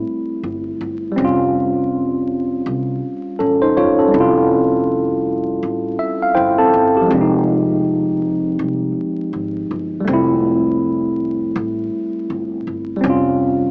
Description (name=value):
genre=lo-fi hip hop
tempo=81 BPM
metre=4/4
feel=swing 62% on 16ths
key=F major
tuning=A4 = 441 Hz
part: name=tine electric piano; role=accompaniment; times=0.0-13.7 s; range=F3 to A5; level=-15 LUFS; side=equal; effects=medium stereo tremolo, cassette tape, low-pass filter
part: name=upright bass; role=bass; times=0.4-13.7 s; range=E#1 to B#1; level=-26 LUFS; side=equal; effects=none
room=wet plate reverb, RT60 2.6 s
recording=dreamy mix soaked in reverb, vinyl crackle, small speaker sound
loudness=-15 LUFS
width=side -39 dB against mid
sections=0.0-13.7 A section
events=tine electric piano fill 5.6-7.1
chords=0.0 Fmaj9 (rootless); 1.2 A7alt/E#; 4.1 Fmaj9; 7.1 Fm9; 10.1 Fmaj9; 13.0 A7#9b13/E# (rootless)